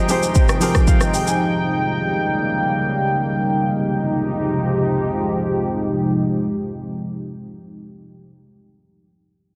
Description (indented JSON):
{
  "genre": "amapiano",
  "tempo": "free time",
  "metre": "none",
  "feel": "none",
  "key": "F minor",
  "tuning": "A4 = 439 Hz",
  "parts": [
    { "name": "clear baby grand piano", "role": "accompaniment", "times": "0.0-1.5 s", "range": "F3 to Ab5", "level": "-24 LUFS", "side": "equal", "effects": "none" },
    { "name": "deep dark ambient pad", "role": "sustained chords", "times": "0.0-7.5 s", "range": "C3 to G5", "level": "-22 LUFS", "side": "equal", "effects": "chorus, built-in reverb, sidechain pumping" },
    { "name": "afro-pop drum kit", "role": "drums", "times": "0.1-1.4 s", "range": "hi-hat, kick drum, rim click, shaker", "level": "-18 LUFS", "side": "equal", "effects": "none" }
  ],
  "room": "light reverb, digital ambience",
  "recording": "dense, heavily limited modern master",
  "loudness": "-20 LUFS",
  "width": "mono",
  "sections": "0.0-3.5 A section; 3.5-7.7 B section",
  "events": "none",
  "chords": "0.0 Fm9; 1.4 Eb7; 3.5 Fm9"
}